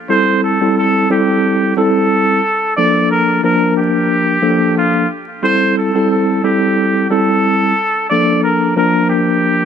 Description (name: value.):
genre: hip hop.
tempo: 90 BPM.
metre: 4/4.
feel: swing 56% on 16ths.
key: A phrygian.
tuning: A4 = 440 Hz.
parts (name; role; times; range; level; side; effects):
trumpet with straight mute; melody; 0.1-9.7 s; F4 to D5; -16 LUFS; right 1 dB; high-pass filter, low-pass filter.
mellow tine electric piano; accompaniment; 0.1-9.7 s; F3 to Bb4; -14 LUFS; equal; fast stereo tremolo, high-pass filter, low-pass filter.
room: light reverb.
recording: vinyl crackle.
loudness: -11 LUFS.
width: side -8 dB against mid.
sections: 0.1-9.7 A section.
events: none.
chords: 0.1 Am7; 2.8 Bbmaj7; 5.4 Am7; 8.1 Bbmaj7.